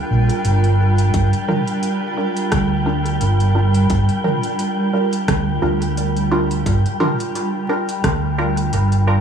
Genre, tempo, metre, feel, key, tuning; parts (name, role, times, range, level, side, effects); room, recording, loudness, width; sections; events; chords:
ambient dub; 87 BPM; 4/4; swing 55% on 16ths; G minor; A4 = 440 Hz
granular cloud pad; sustained chords; 0.0-9.2 s; G3 to Bb4; -22 LUFS; right 1 dB; built-in reverb
wind-like tuned noise texture; texture; 0.0-9.2 s; G5; -27 LUFS; left 5 dB; built-in reverb
hollow-body short-scale fingered electric bass; bass; 0.1-9.2 s; G1 to D2; -17 LUFS; right 1 dB
organic electronic drum kit; drums; 0.3-9.0 s; hi-hat, rim click, toms; -27 LUFS; equal; studio reverb, dub echo
electronic kick drum; drums; 1.1-8.2 s; -22 LUFS; equal; studio reverb
filtered dub chord stab; stabs; 1.5-9.2 s; G3 to Bb4; -23 LUFS; right 2 dB; phaser, dub echo
light reverb, digital ambience; vinyl crackle, studio ambience; -16 LUFS; side -7 dB against mid
0.0-9.2 A section
0.0 Gm7